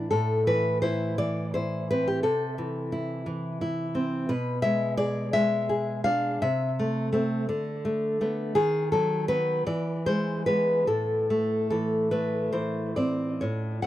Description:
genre	romantic piece for solo classical guitar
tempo	44-59 BPM (dotted quarters)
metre	6/8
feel	rubato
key	A minor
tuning	A4 = 441 Hz
part	nylon-string guitar	solo	0.0-13.9 s	A2 to F#5	-24 LUFS	equal	tape echo
room	moderate booth ambience, RT60 0.2 s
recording	dry, close 1970s-style studio recording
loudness	-24 LUFS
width	side -13 dB against mid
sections	0.0-13.4 A section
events	none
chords	0.1 Am; 2.2 Am/C; 4.3 E7/B; 6.4 Am/C; 7.5 Dsus2; 8.6 B/D#; 9.7 E; 10.9 Am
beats	| 0.11 1.18 | 2.23 3.27 | 4.30 5.35 | 6.44 7.50 | 8.58 9.69 | 10.89 12.13 | 13.42

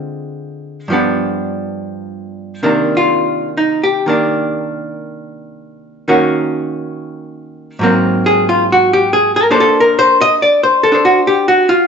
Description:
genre	jazz ballad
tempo	70 BPM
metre	4/4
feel	swing 66% on 8ths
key	unclear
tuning	A4 = 440 Hz
part	archtop guitar, miked and amplified	solo	0.0-11.9 s	G2 to Eb5	-12 LUFS	equal	none
room	wet large studio reverb, RT60 1.1 s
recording	band playing live in one room, nothing above 7.9 kHz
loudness	-11 LUFS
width	side -6 dB against mid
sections	0.0-11.9 A section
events	none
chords	0.0 Dm7b5; 0.9 G7; 2.6 Cm9; 6.1 Ebm7; 7.8 Ab9; 9.5 Bbmaj9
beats	0.02 0.88 1.75 | 2.62 3.48 4.35 5.21 | 6.07 6.93 7.79 8.64 | 9.50 10.36 11.21

